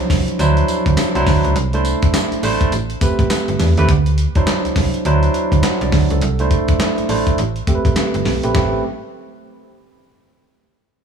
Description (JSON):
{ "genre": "R&B, new jack swing", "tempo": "103 BPM", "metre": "4/4", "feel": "swing 61% on 16ths", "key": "A dorian", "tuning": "A4 = 440 Hz", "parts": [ { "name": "barky tine electric piano", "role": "accompaniment", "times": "0.0-8.8 s", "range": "F3 to F#5", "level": "-19 LUFS", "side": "right 2 dB", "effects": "low-pass filter" }, { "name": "slap-like FM bass", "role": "bass", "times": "0.0-8.8 s", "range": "G1 to E2", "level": "-17 LUFS", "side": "right 1 dB", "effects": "none" }, { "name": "dusty soul sampler-style drum kit", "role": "drums", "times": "0.1-8.7 s", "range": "handclaps, hi-hat, kick drum, snare drum, tambourine", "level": "-19 LUFS", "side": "equal", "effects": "gated reverb" } ], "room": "digital ambience", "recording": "small room ambience", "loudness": "-14 LUFS", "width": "side -7 dB against mid", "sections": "0.0-8.5 A section; 8.5-10.9 B section", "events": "filter sweep on tine electric piano 0.0-8.5", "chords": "0.0 D9; 1.6 C69; 2.7 Am9; 3.9 D9; 6.2 C69; 7.4 Am9", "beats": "0.39 0.97 | 1.56 2.14 2.72 3.30 | 3.89 4.47 5.05 5.63 | 6.22 6.80 7.38 7.96 | 8.55" }